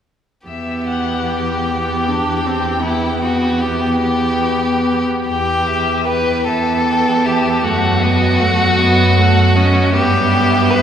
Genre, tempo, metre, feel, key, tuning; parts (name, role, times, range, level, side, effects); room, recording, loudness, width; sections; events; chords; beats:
classical, slow romantic movement for string quartet; 46-53 BPM (dotted quarters); 6/8; rubato; E minor; A4 = 440 Hz
rich violin; melody; 0.5-10.8 s; D#5 to G5; -23 LUFS; left 5 dB
rich violin; second line; 0.5-10.8 s; E4 to B4; -17 LUFS; left 1 dB
rich viola; accompaniment; 0.5-10.8 s; A3 to D4; -19 LUFS; right 1 dB
rich cello; bass; 0.5-10.8 s; E2 to G2; -18 LUFS; right 2 dB
wet cathedral reverb, RT60 4.9 s; recorded in a church or concert hall; -13 LUFS; side -8 dB against mid
0.5-5.3 A section; 5.3-10.8 B section
0.5 Em; 7.6 F#m6; 9.9 Em/G
| 0.47 1.68 | 2.83 4.02 | 5.28 6.47 | 7.64 8.79 | 9.93